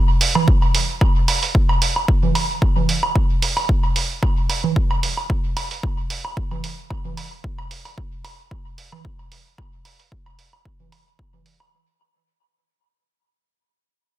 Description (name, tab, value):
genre	techno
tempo	112 BPM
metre	4/4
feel	swing 54% on 16ths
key	none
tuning	none
part	electronic hi-hat	drums	0.2-11.6 s	none	-24 LUFS	right 6 dB	none
part	congas and woodblock	percussion	0.4-11.7 s	none	-24 LUFS	right 4 dB	overdrive, sidechain pumping on perc, dub echo
part	electronic kick drum	drums	0.5-11.3 s	none	-19 LUFS	equal	none
room	little or no reverb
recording	dense, heavily limited modern master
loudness	-17 LUFS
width	side -14 dB against mid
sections	0.0-11.7 A section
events	fade-out 0.0-11.7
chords	none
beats	0.48 | 1.01 1.55 2.08 2.62 | 3.15 3.69 4.23 4.76 | 5.30 5.83 6.37 6.90 | 7.44 7.98 8.51 9.05 | 9.58 10.12 10.65 11.19